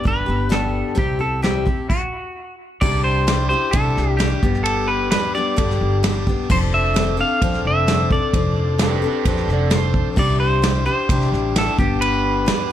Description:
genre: folk rock and heartland rock.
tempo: 130 BPM.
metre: 4/4.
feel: straight.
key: unclear.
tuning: A4 = 439 Hz.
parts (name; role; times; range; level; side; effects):
clean electric guitar; melody; 0.0-12.7 s; F#4 to F5; -22 LUFS; right 1 dB; tape echo.
picked steel-string acoustic guitar; accompaniment; 0.0-12.7 s; G2 to A4; -23 LUFS; left 6 dB; plate reverb.
upright bass; bass; 0.1-12.5 s; F1 to C3; -22 LUFS; right 1 dB; none.
soft brush drum kit; drums; 0.1-12.6 s; crash cymbal, hi-hat, kick drum, ride cymbal, snare drum; -21 LUFS; right 1 dB; none.
overdriven slide guitar; second line; 8.8-10.1 s; G4 to D5; -26 LUFS; right 9 dB; none.
room: light reverb.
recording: none.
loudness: -16 LUFS.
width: side -11 dB against mid.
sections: 0.0-2.8 A section; 2.8-12.7 B section.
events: stop 1.9-2.8.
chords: 0.0 G; 1.0 C; 1.9 N.C.; 2.8 Cadd9; 4.4 G; 6.5 F6; 10.2 Cadd9; 11.8 G.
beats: 0.06 0.52 | 0.98 1.44 1.90 2.36 | 2.82 3.28 3.74 4.20 | 4.66 5.12 5.58 6.04 | 6.50 6.96 7.42 7.88 | 8.34 8.79 9.26 9.71 | 10.18 10.64 11.10 11.56 | 12.02 12.48.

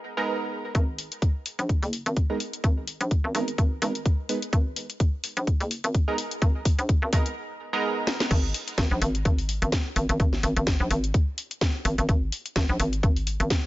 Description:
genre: bass house.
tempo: 127 BPM.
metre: 4/4.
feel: swing 56% on 16ths.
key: G# minor.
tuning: A4 = 442 Hz.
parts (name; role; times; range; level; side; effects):
band-passed chord stab; stabs; 0.2-8.3 s; G#3 to B4; -30 LUFS; right 3 dB; chorus, sidechain pumping, tape echo.
hollow knocking FM bass; bass; 0.7-13.5 s; F#1 to A#1; -26 LUFS; equal; tube saturation, sidechain pumping, high-pass filter.
electronic kick drum; drums; 0.7-13.6 s; none; -23 LUFS; equal; none.
house drum kit; drums; 0.7-13.6 s; crash cymbal, hi-hat, snare drum; -30 LUFS; left 1 dB; none.
room: digital ambience.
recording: nothing above 7.5 kHz.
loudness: -23 LUFS.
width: side -17 dB against mid.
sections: 0.7-8.3 A section; 8.3-13.7 B section.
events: build-up 0.7-8.3; filter sweep on synth stab 0.7-8.3; drum fill 4.5-7.4, 8.1; break 7.4-8.3; drop 8.3-13.7.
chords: 0.0 G#madd9; 8.3 N.C..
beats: 0.28 | 0.75 1.22 1.69 2.17 | 2.64 3.11 3.58 4.06 | 4.53 5.00 5.47 5.95 | 6.42 6.89 7.36 7.83 | 8.31 8.78 9.25 9.72 | 10.20 10.67 11.14 11.62 | 12.09 12.56 13.03 13.51.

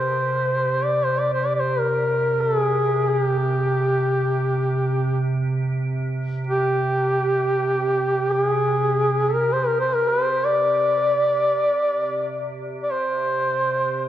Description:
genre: caucasian folk, Caucasian lament.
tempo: free time.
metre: none.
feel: none.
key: unclear.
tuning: A4 = 440 Hz.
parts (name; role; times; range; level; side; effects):
mellow duduk; melody; 0.0-14.1 s; G4 to D5; -20 LUFS; equal; slapback echo.
icy glass pad; drone; 0.0-14.1 s; C3; -25 LUFS; right 2 dB; chorus, built-in reverb.
room: wet church reverb, RT60 4.0 s.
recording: none.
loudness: -19 LUFS.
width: side -12 dB against mid.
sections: 0.0-14.1 A section.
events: none.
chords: none.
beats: free time.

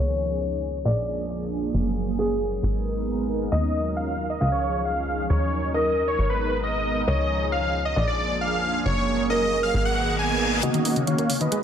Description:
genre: uplifting trance.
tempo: 135 BPM.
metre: 4/4.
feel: straight.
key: Eb minor.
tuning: A4 = 442 Hz.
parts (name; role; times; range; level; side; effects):
felt-muted upright piano; second line; 0.0-10.5 s; Ab4 to F5; -28 LUFS; left 1 dB; tape echo.
lush unison pad; sustained chords; 0.0-11.6 s; Eb3 to Bb4; -27 LUFS; right 2 dB; chorus, phaser.
plucky analog bass; bass; 0.0-10.6 s; Gb1 to Eb2; -27 LUFS; equal; none.
dense compressed supersaw; melody; 3.5-11.6 s; Gb4 to Ab5; -26 LUFS; equal; low-pass filter, digital delay.
reverse cymbal; sound effects; 9.9-10.6 s; none; -30 LUFS; left 4 dB; none.
tight sequenced synth; arpeggios; 10.6-11.6 s; Db3 to Bb3; -26 LUFS; left 2 dB; chorus.
electronic hi-hat; drums; 10.6-11.6 s; none; -29 LUFS; right 2 dB; overdrive, high-pass filter on snare, high-pass filter on hats.
room: light reverb.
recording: low-pass filter.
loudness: -22 LUFS.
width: side -8 dB against mid.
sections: 0.0-10.6 A section; 10.6-11.6 B section.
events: filter sweep on analog synth pad 0.0-10.6; filter sweep 0.0-10.6; reverse cymbal 9.9-10.6; build-up 10.6-11.6; filter sweep on supersaw synth 10.6-11.6; filter sweep on synth arpeggio sound 10.6-11.6.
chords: 0.0 Dbadd9; 0.9 Bb7; 1.7 Gbadd9; 2.6 Abmadd9; 3.5 Ebm7; 4.4 Dbadd9; 5.3 Ebm7; 6.2 Abmadd9; 7.1 Dbadd9; 8.0 Bb7; 8.9 Gbadd9; 9.7 Abmadd9; 10.6 Ebm7.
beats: 0.41 0.85 1.30 | 1.74 2.19 2.63 3.08 | 3.52 3.96 4.41 4.85 | 5.30 5.74 6.19 6.63 | 7.08 7.52 7.96 8.41 | 8.85 9.30 9.74 10.19 | 10.63 11.08 11.52.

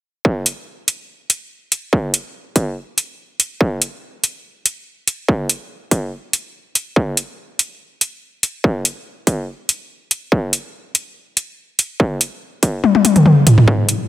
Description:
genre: heavy wobble dubstep.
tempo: 143 BPM.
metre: 4/4.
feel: swing 53% on 16ths, half-time.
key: none.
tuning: none.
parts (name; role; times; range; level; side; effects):
electronic kick drum; drums; 0.2-13.8 s; none; -17 LUFS; equal; distortion, high-pass filter on kick.
dubstep drum kit; drums; 0.5-14.0 s; hi-hat, toms; -13 LUFS; left 1 dB; none.
room: moderate lush hall reverb, RT60 2.0 s.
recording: dense, heavily limited modern master.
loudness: -16 LUFS.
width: side -14 dB against mid.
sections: 0.2-14.1 A section.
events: kick drops out 12.8-13.7; drum fill 12.8-13.7.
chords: none.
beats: | 0.25 0.67 1.09 1.51 | 1.93 2.35 2.77 3.19 | 3.61 4.03 4.45 4.87 | 5.29 5.70 6.12 6.54 | 6.96 7.38 7.80 8.22 | 8.64 9.06 9.48 9.90 | 10.32 10.74 11.16 11.58 | 12.00 12.42 12.84 13.26 | 13.68.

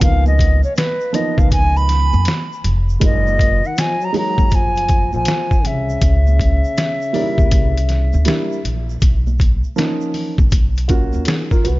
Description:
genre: hip hop, jazz-hop.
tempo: 80 BPM.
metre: 4/4.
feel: swing 65% on 16ths.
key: F# major.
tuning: A4 = 440 Hz.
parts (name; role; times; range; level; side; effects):
concert flute; melody; 0.0-8.7 s; B4 to B5; -21 LUFS; right 1 dB; analog delay.
dark upright piano; accompaniment; 0.0-11.8 s; E#3 to D5; -22 LUFS; right 2 dB; none.
upright bass; bass; 0.0-11.8 s; E#1 to E#2; -17 LUFS; equal; none.
trip hop sampler-style drum kit; drums; 0.0-11.8 s; hi-hat, kick drum, snare drum; -16 LUFS; equal; none.
tube shaker and congas; percussion; 0.0-11.8 s; none; -33 LUFS; right 5 dB; none.
growling trombone; second line; 3.0-8.6 s; A#2 to F#3; -26 LUFS; left 4 dB; none.
room: small room ambience.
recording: nothing above 7.5 kHz.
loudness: -14 LUFS.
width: side -19 dB against mid.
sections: 0.0-3.0 A section; 3.0-11.8 B section.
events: flute solo 0.0-3.0.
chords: 0.0 C#13; 3.0 F#maj13; 6.0 C#m; 7.5 C9; 9.0 Bmaj9#11.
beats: | 0.02 0.77 1.52 2.27 | 3.02 3.77 4.52 5.27 | 6.02 6.77 7.52 8.27 | 9.02 9.77 10.52 11.27.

